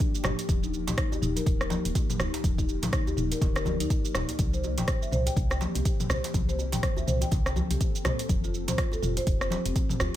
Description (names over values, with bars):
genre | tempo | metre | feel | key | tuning
afro house | 123 BPM | 4/4 | swing 59% on 16ths | unclear | A4 = 440 Hz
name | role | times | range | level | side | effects
ethereal airy pad | sustained chords | 0.0-10.2 s | E3 to D5 | -37 LUFS | left 2 dB | ensemble chorus, built-in reverb, sidechain pumping
afro-pop drum kit | drums | 0.0-10.1 s | hi-hat, rim click, shaker, toms | -32 LUFS | right 1 dB | studio reverb
electronic kick drum | drums | 0.0-9.9 s | none | -27 LUFS | equal | studio reverb
djembe | percussion | 0.0-10.1 s | none | -37 LUFS | right 2 dB | none
marimba with soft mallets | arpeggios | 0.2-10.1 s | Bb3 to G5 | -34 LUFS | left 2 dB | sidechain pumping, tape echo
woody FM bass | bass | 0.2-10.1 s | Eb1 to Eb2 | -31 LUFS | equal | sidechain pumping
congas | percussion | 0.2-10.1 s | none | -35 LUFS | left 3 dB | none
room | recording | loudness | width
little or no reverb | none | -25 LUFS | side -13 dB against mid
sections
0.0-10.2 A section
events
none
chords
0.5 Ebadd9; 4.4 C7; 8.3 Fadd9